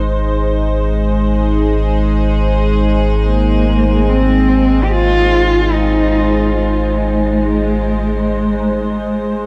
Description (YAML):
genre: ambient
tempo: free time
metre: none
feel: none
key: Ab major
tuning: A4 = 443 Hz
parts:
  - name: evolving wavetable pad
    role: sustained chords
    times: 0.0-9.5 s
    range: Ab3 to C5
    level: -20 LUFS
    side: equal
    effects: chorus, built-in reverb
  - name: tine electric piano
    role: arpeggios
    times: 0.0-9.5 s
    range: none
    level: barely audible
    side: none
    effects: none
  - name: round analog bass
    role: bass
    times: 0.0-9.5 s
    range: Ab1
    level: -19 LUFS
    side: equal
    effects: none
  - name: dark cello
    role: melody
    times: 3.3-9.4 s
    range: Ab3 to G4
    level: -18 LUFS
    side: equal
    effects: delay
room: wet huge ambient reverb, RT60 7.9 s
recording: dark, warm production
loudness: -14 LUFS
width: mono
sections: 0.0-9.5 A section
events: none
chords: 0.0 Ab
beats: free time